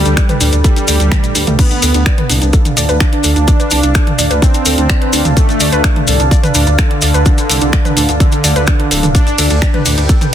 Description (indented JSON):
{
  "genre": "melodic techno",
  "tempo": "127 BPM",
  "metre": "4/4",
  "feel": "straight",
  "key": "D dorian",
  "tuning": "A4 = 440 Hz",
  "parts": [
    { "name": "soft supersaw", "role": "melody", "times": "0.0-9.8 s", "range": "D3 to D4", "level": "-19 LUFS", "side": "equal", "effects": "sidechain pumping, ping-pong delay" },
    { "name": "deep dark ambient pad", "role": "sustained chords", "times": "0.0-10.3 s", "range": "D4 to A5", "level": "-21 LUFS", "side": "right 2 dB", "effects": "chorus, built-in reverb, sidechain pumping" },
    { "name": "dark detuned saw bass", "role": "bass", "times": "0.0-10.1 s", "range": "D1 to D2", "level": "-14 LUFS", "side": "equal", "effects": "sidechain pumping" },
    { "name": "analog drone", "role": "drone", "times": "0.0-10.3 s", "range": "D3 to D4", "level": "-26 LUFS", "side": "right 2 dB", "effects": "none" },
    { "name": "warbly dusty pluck", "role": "arpeggios", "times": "0.1-10.2 s", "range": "A3 to D5", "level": "-20 LUFS", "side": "right 1 dB", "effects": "chorus, sidechain pumping, ping-pong delay" },
    { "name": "house drum kit", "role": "drums", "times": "0.1-10.3 s", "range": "crash cymbal, finger snaps, hi-hat, ride cymbal, toms", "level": "-17 LUFS", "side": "right 1 dB", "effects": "soft clipping on snare" },
    { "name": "maracas", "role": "percussion", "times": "0.1-10.3 s", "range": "none", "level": "-20 LUFS", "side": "left 4 dB", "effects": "none" },
    { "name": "electronic kick drum", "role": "drums", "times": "0.2-10.2 s", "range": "none", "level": "-11 LUFS", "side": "equal", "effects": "none" }
  ],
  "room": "digital ambience",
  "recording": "dense, heavily limited modern master",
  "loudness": "-9 LUFS",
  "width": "side -10 dB against mid",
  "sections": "0.0-10.3 A section",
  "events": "none",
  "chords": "0.0 Gadd9/D; 1.6 Dm; 9.1 Gadd9/D"
}